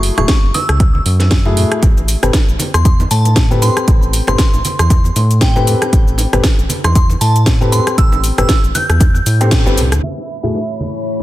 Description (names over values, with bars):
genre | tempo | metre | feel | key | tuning
deep house | 117 BPM | 4/4 | swing 57% on 16ths | unclear | A4 = 440 Hz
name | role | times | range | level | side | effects
felt-muted upright piano | stabs | 0.0-10.6 s | A3 to C5 | -20 LUFS | left 3 dB | sidechain pumping, tape echo
round analog bass | bass | 0.0-10.0 s | E1 to A2 | -14 LUFS | equal | tube saturation, sidechain pumping
house drum kit | drums | 0.0-10.0 s | hi-hat, rim click, shaker, snare drum | -19 LUFS | equal | low-pass filter on snare, low-pass filter on hats, low-pass filter on perc
glassy synth bell | melody | 0.2-9.5 s | G5 to G6 | -21 LUFS | equal | chorus, tape echo
congas and bongos | percussion | 0.2-11.2 s | none | -25 LUFS | right 2 dB | none
electronic kick drum | drums | 0.3-9.6 s | none | -12 LUFS | equal | none
warm velvety synth lead | melody | 10.0-11.2 s | E5 | -26 LUFS | right 3 dB | chorus, tape echo
deep dark ambient pad | sustained chords | 10.4-11.2 s | A3 to G#5 | -23 LUFS | left 3 dB | chorus, built-in reverb, sidechain pumping
soft string machine | texture | 10.1-11.2 s | B5 | -40 LUFS | equal | phaser, ensemble chorus
room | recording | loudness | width
little or no reverb | dense, heavily limited modern master, low-pass filter | -10 LUFS | side -15 dB against mid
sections
0.0-10.0 A section; 10.0-11.2 B section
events
band accent 9.5; filter sweep on drum 10.0-11.2; filter sweep 10.0-11.2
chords
0.0 F#m9; 1.8 Am9; 10.0 F#m9